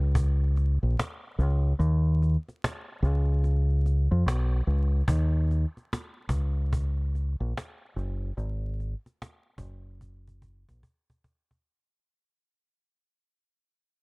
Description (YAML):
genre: lo-fi hip hop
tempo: 73 BPM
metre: 4/4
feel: swing 65% on 16ths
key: Eb minor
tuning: A4 = 440 Hz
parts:
  - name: deep dub fingered electric bass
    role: bass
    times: 0.0-10.8 s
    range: Gb1 to F2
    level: -24 LUFS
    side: equal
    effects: none
  - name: cajon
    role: drums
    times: 0.2-11.6 s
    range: none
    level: -32 LUFS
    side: equal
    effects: vintage 12-bit sampler grit
room: small room ambience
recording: vinyl crackle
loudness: -25 LUFS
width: side -36 dB against mid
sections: 0.0-5.1 A section; 5.1-11.7 B section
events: kick muted 1.8-5.1; fade-out 5.1-11.7; drum fill 10.0-11.7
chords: none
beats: 0.15 0.97 | 1.79 2.61 3.43 4.26 | 5.08 5.90 6.72 7.54 | 8.37 9.19 10.01 10.83